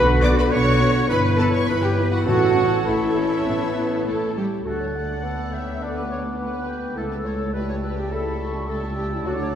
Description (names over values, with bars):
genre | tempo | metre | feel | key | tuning
quick classical-period movement for symphony orchestra | 104 BPM | 4/4 | straight | D major | A4 = 440 Hz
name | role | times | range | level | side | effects
rich studio violin section | melody | 0.0-9.6 s | C#4 to D6 | -35 LUFS | left 3 dB | none
clear oboe | second line | 0.0-9.6 s | B4 to B5 | -35 LUFS | equal | none
dark clarinet | second line | 0.0-9.5 s | E4 to F#5 | -28 LUFS | right 2 dB | none
small flute group | second line | 0.0-9.6 s | E4 to F#6 | -30 LUFS | equal | none
warm studio violin section | second line | 0.0-9.5 s | E4 to F#5 | -33 LUFS | left 3 dB | none
dark bassoon | accompaniment | 0.0-9.6 s | D3 to B3 | -29 LUFS | equal | none
warm studio viola section | accompaniment | 0.0-9.6 s | G3 to E4 | -30 LUFS | equal | none
dark French horn section | sustained chords | 0.0-9.5 s | A3 to E4 | -27 LUFS | left 2 dB | none
mellow trumpet | stabs | 0.0-9.5 s | E4 to D5 | -28 LUFS | right 2 dB | none
rich studio cello section | bass | 0.0-9.6 s | C#2 to B4 | -30 LUFS | right 1 dB | none
rich studio double bass section | bass | 0.0-9.6 s | G1 to D2 | -26 LUFS | right 1 dB | none
timpani | percussion | 2.3-3.1 s | A2 | -29 LUFS | left 1 dB | none
room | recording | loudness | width
wet scoring stage reverb, RT60 1.7 s | heard from further back in the room | -19 LUFS | side -9 dB against mid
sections
0.0-4.7 A section; 4.7-9.6 B section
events
none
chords
0.0 Bm; 1.1 Em/G; 2.3 A; 4.7 D; 7.0 A/C#